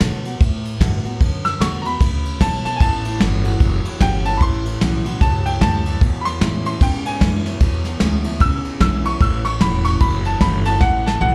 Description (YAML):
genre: rockabilly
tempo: 150 BPM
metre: 4/4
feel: swing 61% on 8ths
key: A mixolydian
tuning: A4 = 440 Hz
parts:
  - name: picked steel-string acoustic guitar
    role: accompaniment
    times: 0.0-11.3 s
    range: E2 to F#4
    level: -27 LUFS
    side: equal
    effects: none
  - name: upright bass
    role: bass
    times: 0.0-11.3 s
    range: E1 to B2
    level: -25 LUFS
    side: equal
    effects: none
  - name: soft brush drum kit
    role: drums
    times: 0.0-11.2 s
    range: kick drum, ride cymbal, snare drum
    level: -21 LUFS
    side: equal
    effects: none
  - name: bright upright piano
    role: melody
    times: 1.4-11.3 s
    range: F#5 to E6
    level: -25 LUFS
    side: equal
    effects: none
  - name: electric guitar through a small old amp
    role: riff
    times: 2.8-11.3 s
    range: E2 to G3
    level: -31 LUFS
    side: equal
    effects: slapback echo
room: little or no reverb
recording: live gig heard through the venue's PA, club reverb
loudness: -18 LUFS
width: mono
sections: 0.0-11.3 A section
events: upright piano solo 0.0-11.3; drum fill 10.8-11.3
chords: 0.0 D6; 2.8 A6; 6.0 E6; 9.2 A6